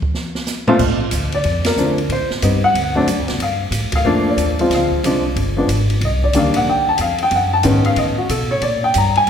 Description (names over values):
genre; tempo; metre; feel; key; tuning
jazz piano trio; 184 BPM; 4/4; swing 63% on 8ths; Bb major; A4 = 438 Hz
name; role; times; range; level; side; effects
open jazz drum kit; drums; 0.0-9.3 s; crash cymbal, hi-hat, kick drum, ride cymbal, snare drum, toms; -24 LUFS; right 1 dB; none
warm upright piano; melody; 0.7-9.3 s; Bb2 to Bb5; -16 LUFS; left 1 dB; none
upright bass; bass; 0.8-9.3 s; G1 to B2; -20 LUFS; equal; none
room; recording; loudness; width
wet concert hall reverb, RT60 1.9 s; recorded in a church or concert hall; -15 LUFS; side -8 dB against mid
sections
0.8-9.3 A section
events
band accent 1.6, 3.9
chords
0.1 N.C.; 0.8 Bb; 2.1 Am7b5; 2.7 D7; 3.4 Gm9; 4.7 Dm7b5; 5.4 G5; 6.0 Cm7; 7.3 B13; 8.6 Bb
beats
0.14 0.47 | 0.79 1.12 1.44 1.77 | 2.10 2.42 2.75 3.07 | 3.40 3.73 4.05 4.38 | 4.70 5.03 5.35 5.68 | 6.01 6.33 6.66 6.98 | 7.31 7.63 7.96 8.29 | 8.61 8.94 9.26